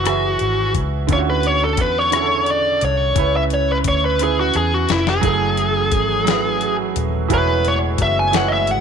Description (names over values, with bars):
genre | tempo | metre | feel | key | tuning
slow six-eight R&B | 58 BPM (dotted quarters) | 6/8 | straight | F# minor | A4 = 443 Hz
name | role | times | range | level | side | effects
bluesy overdriven lead guitar | melody | 0.0-8.8 s | E4 to G#5 | -18 LUFS | left 1 dB | distortion, slapback echo
bright baby grand piano | accompaniment | 0.0-8.8 s | C#3 to E5 | -22 LUFS | right 14 dB | none
vintage muted fingered electric bass | bass | 0.0-8.8 s | D#1 to E2 | -22 LUFS | left 1 dB | transformer saturation
dusty soul sampler-style drum kit | drums | 0.1-8.8 s | hi-hat, kick drum, rim click, snare drum | -22 LUFS | left 5 dB | none
warm analog pad | sustained chords | 5.2-8.8 s | C#3 to G#4 | -28 LUFS | equal | chorus
room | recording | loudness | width
light reverb | 1960s-style stereo | -15 LUFS | side -7 dB against mid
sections
0.0-8.8 A section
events
lead electric guitar solo 0.0-8.8; drum fill 4.2-5.2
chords
0.0 E69; 1.1 Dmaj9; 3.2 C#m7; 5.2 F#m9; 7.3 Amaj13/E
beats
0.06 | 1.09 2.13 | 3.16 4.20 | 5.23 6.26 | 7.30 8.33